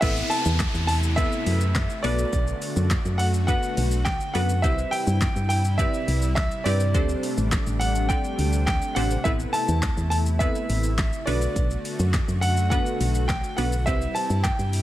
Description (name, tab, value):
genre	dance-pop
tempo	104 BPM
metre	4/4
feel	straight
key	A dorian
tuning	A4 = 435 Hz
part	clear grand piano	melody	0.0-14.8 s	D5 to A5	-28 LUFS	equal	tape echo
part	wavetable chord stab	accompaniment	0.0-14.5 s	B3 to D5	-30 LUFS	right 1 dB	sidechain pumping
part	soft supersaw	sustained chords	0.0-14.8 s	C3 to F#4	-32 LUFS	equal	sidechain pumping
part	solid FM bass	bass	0.0-14.8 s	A1 to G2	-24 LUFS	equal	sidechain pumping
part	deep house drum kit	drums	0.0-14.8 s	crash cymbal, handclaps, hi-hat, kick drum, shaker, snare drum	-27 LUFS	equal	none
part	downlifter	sound effects	0.0-4.6 s	none	-34 LUFS	equal	none
room	little or no reverb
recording	none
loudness	-21 LUFS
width	side -14 dB against mid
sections	0.0-14.8 A section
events	none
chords	0.0 Amadd9; 2.0 Bm7; 4.6 Cmaj7; 6.9 D7sus4; 9.3 Amadd9; 11.3 Bm7; 13.9 Cmaj7